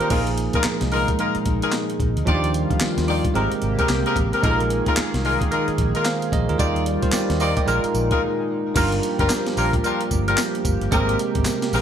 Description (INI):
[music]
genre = R&B, new jack swing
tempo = 111 BPM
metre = 4/4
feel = swing 61% on 16ths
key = unclear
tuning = A4 = 440 Hz
[part]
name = bell-like tine electric piano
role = accompaniment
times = 0.0-11.8 s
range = Eb3 to Bb5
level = -25 LUFS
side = right 5 dB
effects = none
[part]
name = warm horn section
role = stabs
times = 0.0-11.8 s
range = C4 to D5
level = -24 LUFS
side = left 3 dB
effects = ping-pong delay
[part]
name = breakbeat sampler-style drum kit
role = drums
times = 0.0-11.8 s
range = crash cymbal, handclaps, hi-hat, kick drum, snare drum, tambourine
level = -24 LUFS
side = equal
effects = overdrive
[part]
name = chorused pulse-width pad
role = sustained chords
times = 0.1-11.8 s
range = Bb2 to Ab4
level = -27 LUFS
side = equal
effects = none
[part]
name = vintage muted fingered electric bass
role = bass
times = 0.1-11.8 s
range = G1 to Eb2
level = -25 LUFS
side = equal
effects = none
[sound]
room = moderate plate reverb, RT60 1.3 s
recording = bright 1980s-style digital production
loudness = -18 LUFS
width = side -9 dB against mid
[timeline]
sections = 0.1-8.8 A section; 8.8-11.8 B section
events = break 8.2-8.8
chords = 0.1 Bb7sus4; 2.3 Ebmaj9; 3.4 Abmaj9; 4.4 Bb7sus4; 6.6 Ebmaj9; 7.7 Bb7sus4; 8.8 Gm7; 10.9 Abmaj9